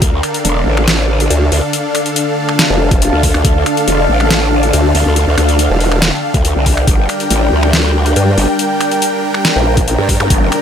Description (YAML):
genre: heavy wobble dubstep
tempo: 140 BPM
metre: 4/4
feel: half-time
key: D minor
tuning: A4 = 440 Hz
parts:
  - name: supersaw chords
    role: sustained chords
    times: 0.0-10.6 s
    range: D3 to G5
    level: -19 LUFS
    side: right 1 dB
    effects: sidechain pumping
  - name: growl bass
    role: bass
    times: 0.0-10.5 s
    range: E1 to G2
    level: -13 LUFS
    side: equal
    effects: chorus, overdrive
  - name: dubstep drum kit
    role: drums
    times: 0.0-10.6 s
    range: finger snaps, hi-hat, snare drum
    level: -16 LUFS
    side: left 1 dB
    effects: overdrive
  - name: electronic kick drum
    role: drums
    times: 0.0-0.1, 2.9-3.5, 6.3-7.0, 9.8-10.4 s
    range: none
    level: -14 LUFS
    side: equal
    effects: overdrive
  - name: granular cloud pad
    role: texture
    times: 0.0-10.6 s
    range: D4 to Bb5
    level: -18 LUFS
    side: left 2 dB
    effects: built-in reverb, sidechain pumping
  - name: formant-sweep wobble bass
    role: bass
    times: 1.3-10.0 s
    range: E1 to G2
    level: -13 LUFS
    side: equal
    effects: chorus, overdrive
  - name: zap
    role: sound effects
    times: 10.2-10.3 s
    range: none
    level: -18 LUFS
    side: equal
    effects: none
room: light reverb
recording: none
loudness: -10 LUFS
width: side -8 dB against mid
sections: 0.0-10.6 A section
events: none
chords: 0.0 Dm; 6.9 Gm